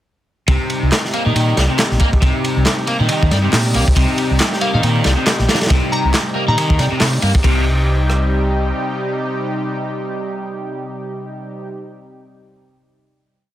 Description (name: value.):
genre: breakbeat, breaks.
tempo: 138 BPM.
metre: 4/4.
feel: swing 57% on 16ths.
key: C minor.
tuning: A4 = 439 Hz.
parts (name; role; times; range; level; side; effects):
lush unison pad; sustained chords; 0.5-11.7 s; C3 to G4; -23 LUFS; equal; chorus, sidechain pumping.
crunchy overdriven guitar; riff; 0.5-7.6 s; C3 to Bb3; -21 LUFS; equal; tube saturation, tape echo.
hollow-body short-scale fingered electric bass; bass; 0.5-8.7 s; Bb1 to C3; -16 LUFS; equal; none.
crunchy breakbeat drum kit; drums; 0.5-8.2 s; crash cymbal, hi-hat, kick drum, ride cymbal, rim click, snare drum; -18 LUFS; equal; none.
electronic handclaps; drums; 0.9-7.1 s; none; -22 LUFS; equal; none.
glassy wavetable pluck; melody; 4.6-6.9 s; F5 to Bb5; -23 LUFS; left 2 dB; chorus, old record sound, tape echo.
room: light reverb.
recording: none.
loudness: -14 LUFS.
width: side -13 dB against mid.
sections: 0.5-7.4 groove; 7.4-10.9 final chord.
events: band accent 7.0.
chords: 0.5 Cm.